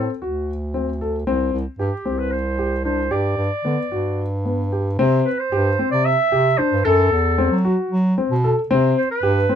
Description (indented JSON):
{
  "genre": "contemporary instrumental, chamber music in an uneven meter",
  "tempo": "226 BPM (eighths)",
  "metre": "7/8",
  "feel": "straight",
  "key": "unclear",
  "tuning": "A4 = 441 Hz",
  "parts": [
    { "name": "warm clarinet", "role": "melody", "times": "0.0-9.6 s", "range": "G4 to E5", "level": "-21 LUFS", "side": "right 2 dB", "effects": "none" },
    { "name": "dark concert grand piano", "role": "arpeggios", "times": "0.0-9.6 s", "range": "B3 to A4", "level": "-22 LUFS", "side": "left 3 dB", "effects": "none" },
    { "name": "warm bass clarinet", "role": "bass", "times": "0.0-9.5 s", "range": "C2 to F#3", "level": "-21 LUFS", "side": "right 1 dB", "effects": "none" }
  ],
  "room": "little or no reverb",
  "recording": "close, detailed microphones",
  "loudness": "-17 LUFS",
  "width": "side -8 dB against mid",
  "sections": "0.0-5.0 A section; 5.0-9.6 B section",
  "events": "none",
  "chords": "0.0 D7; 1.3 C5; 3.1 Gmaj7; 5.0 C; 6.9 F#m7b5; 8.7 C5",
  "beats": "0.21 0.47 0.74 1.00 | 1.27 1.53 1.79 2.06 2.32 2.58 2.85 | 3.11 3.38 3.65 3.91 4.18 4.46 4.73 | 4.99 5.26 5.53 5.79 6.06 6.33 6.59 | 6.86 7.12 7.39 7.65 7.92 8.18 8.44 | 8.71 8.97 9.23 9.49"
}